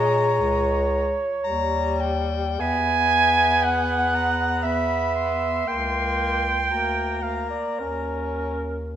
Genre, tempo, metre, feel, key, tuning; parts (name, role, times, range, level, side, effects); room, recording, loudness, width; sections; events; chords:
classical, lyrical piece for single-reed quartet; 50-63 BPM; 3/4; rubato; A4 = 440 Hz
clear soprano saxophone; melody; 0.0-8.6 s; E5 to C6; -29 LUFS; left 6 dB
mellow alto saxophone; second line; 0.0-9.0 s; Bb4 to G#5; -22 LUFS; right 3 dB
warm tenor saxophone; accompaniment; 0.0-8.8 s; G3 to Db4; -28 LUFS; left 3 dB
warm bass clarinet; bass; 0.0-9.0 s; Db2 to Bb2; -28 LUFS; equal
wet recital hall reverb, RT60 1.3 s; -20 LUFS; side -10 dB against mid
0.0-9.0 A section
0.0 Bbm7; 1.4 Eb7; 2.6 E; 5.7 Bbm69/Db; 6.7 Bb/D; 7.8 Eb5